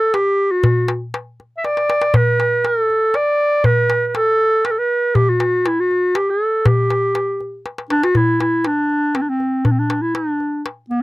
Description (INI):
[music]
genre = Arabic maqam ensemble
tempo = 120 BPM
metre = 3/4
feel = straight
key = G maqam rast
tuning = A4 = 442 Hz
[part]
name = warm clarinet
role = melody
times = 0.0-11.0 s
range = Bb3+49c to E5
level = -16 LUFS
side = equal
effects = none
[part]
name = darbuka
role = percussion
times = 0.1-11.0 s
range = none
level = -18 LUFS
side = left 1 dB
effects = none
[sound]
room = light reverb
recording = dry, close 1970s-style studio recording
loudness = -15 LUFS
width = side -19 dB against mid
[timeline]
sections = 0.0-8.1 A section; 8.1-11.0 B section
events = drum fill 1.6-2.1, 7.6-8.1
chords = none